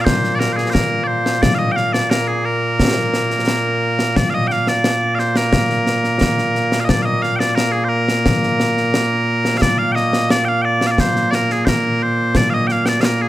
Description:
scottish traditional, Scottish pipe music; 88 BPM; 2/4; straight; Bb major; A4 = 440 Hz
loud bright bagpipes; melody; 0.0-13.3 s; Bb2 to G5; -16 LUFS; equal
concert snare drum and concert bass drum; drums; 0.1-13.2 s; -19 LUFS; left 1 dB
light reverb; close, detailed microphones; -14 LUFS; side -14 dB against mid
0.0-6.9 A section; 6.9-13.3 A section

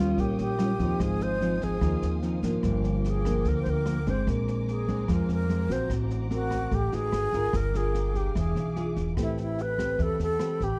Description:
bossa nova; 147 BPM; 4/4; straight; A4 = 438 Hz
bright alto flute; melody; 0.0-10.8 s; E4 to C5; -34 LUFS; equal; plate reverb
nylon-string guitar; accompaniment; 0.0-10.8 s; G2 to B4; -31 LUFS; equal
dark chamber string section; sustained chords; 0.0-10.8 s; G#4 to Eb6; -48 LUFS; equal
upright bass; bass; 0.0-10.7 s; E1 to F2; -32 LUFS; equal
jazz brush drum kit; drums; 0.2-10.7 s; kick drum, rim click, snare drum; -38 LUFS; equal
light reverb; dark, warm production; -27 LUFS; mono
0.0-9.2 A section; 9.2-10.8 B section
0.0 Eb9; 1.0 Ab6; 2.6 Gm7; 4.3 Bb9; 5.9 D7b13/A; 7.1 Abm7; 7.5 Gm7; 8.4 E7b9; 9.2 Am9

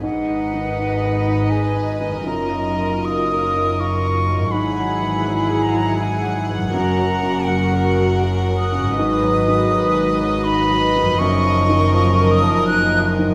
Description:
cinematic, emotional film score for orchestra; 81 BPM; 3/4; rubato; A4 = 440 Hz
warm symphonic violin section; melody; 0.0-13.3 s; D#5 to F#5; -31 LUFS; equal
silver concert flute; second line; 0.0-13.1 s; F#5 to F#6; -24 LUFS; equal
warm studio violin section; second line; 0.0-13.3 s; G#4 to B4; -28 LUFS; equal
clear baby grand piano; accompaniment; 0.0-13.3 s; F#2 to B4; -26 LUFS; equal
dark symphonic viola section; accompaniment; 0.0-13.3 s; E#3 to F#4; -29 LUFS; equal
concert harp; arpeggios; 0.0-13.3 s; F#2 to F#5; -31 LUFS; equal
dark symphonic double bass section; bass; 0.0-13.3 s; F#1 to G#1; -27 LUFS; equal
rich symphonic cello section; bass; 0.0-13.3 s; F#2 to G#2; -27 LUFS; equal
moderate scoring stage reverb, RT60 1.5 s; -18 LUFS; mono
0.0-13.3 A section
0.0 G#m7; 2.3 D#madd9/F#; 4.5 Eadd9/G#; 6.7 F#; 9.0 G#m7; 11.2 D#madd9/F#

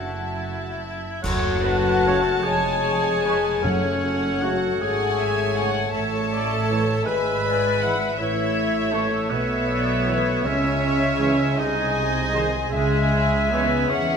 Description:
classical, slow romantic movement for symphony orchestra; 42-55 BPM (dotted quarters); 6/8; rubato; F# minor; A4 = 440 Hz
warm studio violin section; melody; 0.0-14.2 s; E5 to A5; -30 LUFS; left 3 dB
mellow cor anglais; second line; 0.0-14.2 s; G#3 to B4; -30 LUFS; right 2 dB
rich studio violin section; second line; 0.0-14.2 s; G#4 to B5; -32 LUFS; left 2 dB
small flute group; second line; 0.0-14.2 s; A4 to F#5; -29 LUFS; left 2 dB
warm clarinet; second line; 0.0-14.2 s; C#5 to F#5; -34 LUFS; equal
warm studio viola section; accompaniment; 0.0-14.2 s; F#4 to E5; -31 LUFS; right 1 dB
mellow French horn section; sustained chords; 0.0-14.2 s; G#3 to B4; -26 LUFS; left 5 dB
dark studio cello section; bass; 0.0-14.2 s; E#2 to E3; -29 LUFS; right 3 dB
dark studio double bass section; bass; 0.0-14.2 s; E#1 to E2; -30 LUFS; right 3 dB
mellow bassoon; accompaniment; 1.2-14.2 s; G#3 to A3; -33 LUFS; right 3 dB
clash cymbals and concert bass drum; percussion; 1.2-2.8 s; -31 LUFS; right 1 dB
dark trombone section; sustained chords; 2.1-13.7 s; C#3 to A3; -33 LUFS; right 4 dB
dark trumpet section; stabs; 2.1-13.7 s; B4 to C#5; -33 LUFS; right 3 dB
timpani; percussion; 3.6-4.8, 10.4-13.9 s; F#2 to C#3; -32 LUFS; left 1 dB
wet recital hall reverb, RT60 1.5 s; minimal, uncompressed stereo recording; -19 LUFS; side -6 dB against mid
0.0-1.2 A section; 1.2-14.2 B section
band accent 1.2-2.1
0.0 F#m; 2.4 C#/E#; 3.6 F#m; 6.0 A; 7.1 E/G#; 8.2 A; 10.5 C#m; 11.6 G#/B#; 12.7 C#m

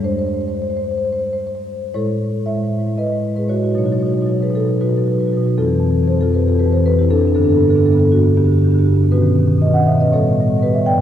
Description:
classical, contemporary piece for solo marimba; 234 BPM (eighths); 7/8; rubato; A4 = 440 Hz
marimba with soft mallets; solo; 0.0-11.0 s; E2 to G5; -14 LUFS; equal
wet cathedral reverb, RT60 4.7 s; heard from further back in the room; -14 LUFS; side -10 dB against mid
0.0-1.9 A section; 1.9-11.0 B section
0.0 Eaug7; 1.9 Amaj7; 3.8 Badd9; 5.6 Fmaj7; 7.4 Gadd9; 9.1 Badd9; 10.1 A9

